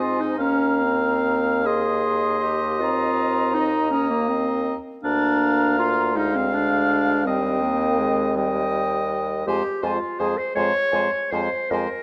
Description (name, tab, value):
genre	classical, slow romantic movement for wind quintet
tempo	54 BPM (dotted quarters)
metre	12/8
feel	rubato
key	unclear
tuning	A4 = 440 Hz
part	mellow concert flute	melody	0.0-11.8 s	F5 to C6	-30 LUFS	equal	none
part	warm oboe	second line	0.0-11.9 s	C5 to F5	-29 LUFS	equal	none
part	mellow French horn	accompaniment	0.0-11.9 s	G3 to C4	-32 LUFS	equal	none
part	mellow clarinet	accompaniment	0.0-12.0 s	Bb3 to Db5	-26 LUFS	equal	none
part	mellow bassoon	bass	0.0-11.9 s	D2 to Ab2	-29 LUFS	equal	none
room	moderate recital hall reverb, RT60 1.6 s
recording	none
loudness	-22 LUFS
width	mono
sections	0.0-12.0 A section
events	none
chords	0.4 Eb5; 5.0 Bb/D; 7.3 Eb; 9.5 Fm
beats	| 0.39 1.65 2.81 3.92 | 5.03 6.16 7.26 8.36 | 9.47 10.56 11.70